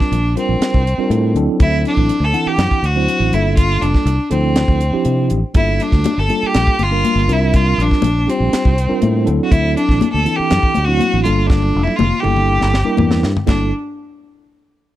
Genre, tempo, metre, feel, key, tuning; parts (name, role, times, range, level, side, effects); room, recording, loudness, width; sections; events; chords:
electric jazz fusion; 121 BPM; 4/4; straight; G dorian; A4 = 439 Hz
clear violin; melody; 0.0-13.7 s; C4 to A4; -19 LUFS; equal; slapback echo
mellow tine electric piano; accompaniment; 0.0-13.7 s; E3 to F#5; -20 LUFS; right 1 dB; medium stereo tremolo
tight funk drum kit; drums; 0.0-13.6 s; crash cymbal, hi-hat, kick drum, snare drum, toms; -17 LUFS; equal
fingered electric bass; bass; 0.1-13.7 s; F1 to C3; -17 LUFS; equal
congas; percussion; 5.5-13.7 s; -22 LUFS; left 7 dB
small room ambience; dry, close 1970s-style studio recording; -13 LUFS; side -14 dB against mid
0.0-13.5 A section; 13.5-15.0 B section
drum fill 11.5-13.5
0.0 C7sus4; 1.4 D9; 3.3 Gm9; 4.3 Dm9; 5.6 Gm9; 7.3 C7sus4; 9.3 D9; 11.2 Gm9; 12.2 Gm69